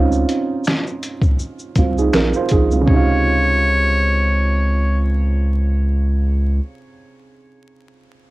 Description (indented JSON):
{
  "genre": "lo-fi hip hop",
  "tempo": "81 BPM",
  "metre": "4/4",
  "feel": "swing 56% on 16ths",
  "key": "Db major",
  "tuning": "A4 = 440 Hz",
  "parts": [
    { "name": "dark upright piano", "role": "accompaniment", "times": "0.0-8.3 s", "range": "C3 to C5", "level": "-20 LUFS", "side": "right 4 dB", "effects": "low-pass filter, cassette tape" },
    { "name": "soft dub sub bass", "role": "bass", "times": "0.0-6.6 s", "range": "Bb1 to Db2", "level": "-17 LUFS", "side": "equal", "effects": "none" },
    { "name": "trip hop sampler-style drum kit", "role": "drums", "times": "0.1-3.1 s", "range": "finger snaps, hi-hat, kick drum, shaker, snare drum", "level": "-17 LUFS", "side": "equal", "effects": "cassette tape" },
    { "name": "trumpet with metal mute", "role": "melody", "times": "2.9-5.1 s", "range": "Db5", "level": "-20 LUFS", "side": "left 1 dB", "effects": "low-pass filter, cassette tape, tape echo" }
  ],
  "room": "light reverb",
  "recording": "home recording on cassette, vinyl crackle",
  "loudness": "-15 LUFS",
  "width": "side -19 dB against mid",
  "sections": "0.0-2.9 A section; 2.9-5.8 B section",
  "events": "none",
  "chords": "0.0 Dbmaj9"
}